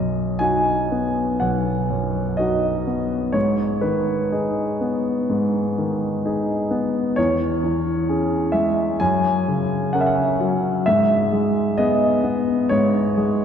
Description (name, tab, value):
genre	classical, romantic character piece for solo piano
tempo	52-67 BPM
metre	4/4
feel	rubato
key	B major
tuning	A4 = 439 Hz
part	warm concert grand piano	solo	0.0-13.4 s	B1 to G#5	-18 LUFS	equal	none
room	wet church reverb, RT60 2.9 s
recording	dark, warm production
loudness	-18 LUFS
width	side -8 dB against mid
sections	0.0-13.4 A section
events	none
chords	0.0 B; 3.3 G#m; 7.2 C#m/E; 9.0 F#; 10.8 E/G#